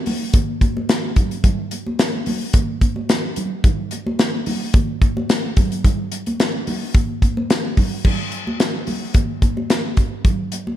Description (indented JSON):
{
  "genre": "funk",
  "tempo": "109 BPM",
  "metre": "4/4",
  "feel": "straight",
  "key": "none",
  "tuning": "none",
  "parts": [
    { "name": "modern studio drum kit", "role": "drums", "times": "0.1-10.7 s", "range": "crash cymbal, hi-hat, kick drum, snare drum", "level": "-17 LUFS", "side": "equal", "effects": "none" },
    { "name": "congas", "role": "percussion", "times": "0.1-10.8 s", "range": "none", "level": "-25 LUFS", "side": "right 1 dB", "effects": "none" }
  ],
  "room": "light reverb, small room ambience",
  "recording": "none",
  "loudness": "-17 LUFS",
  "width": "side -12 dB against mid",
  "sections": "0.0-8.0 A section; 8.0-10.8 B section",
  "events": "none",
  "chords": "none",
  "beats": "0.34 0.89 | 1.44 1.99 2.54 3.09 | 3.64 4.19 4.74 5.29 | 5.84 6.39 6.94 7.50 | 8.04 8.60 9.15 9.70 | 10.25"
}